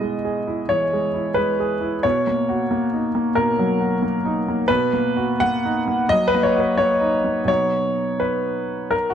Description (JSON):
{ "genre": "neoclassical minimalist piano", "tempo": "81-91 BPM", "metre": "4/4", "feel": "rubato", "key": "B major", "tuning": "A4 = 441 Hz", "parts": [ { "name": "warm concert grand piano", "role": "solo", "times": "0.0-9.1 s", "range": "B2 to F#5", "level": "-18 LUFS", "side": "equal", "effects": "none" } ], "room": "light reverb", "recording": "close, detailed microphones", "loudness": "-18 LUFS", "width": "side -9 dB against mid", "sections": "0.0-9.1 A section", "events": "none", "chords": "0.0 Emaj7/B; 2.0 Bmaj7", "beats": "0.67 1.36 | 2.04 2.70 3.36 4.03 | 4.69 5.41 6.09 6.76 | 7.48 8.21 8.93" }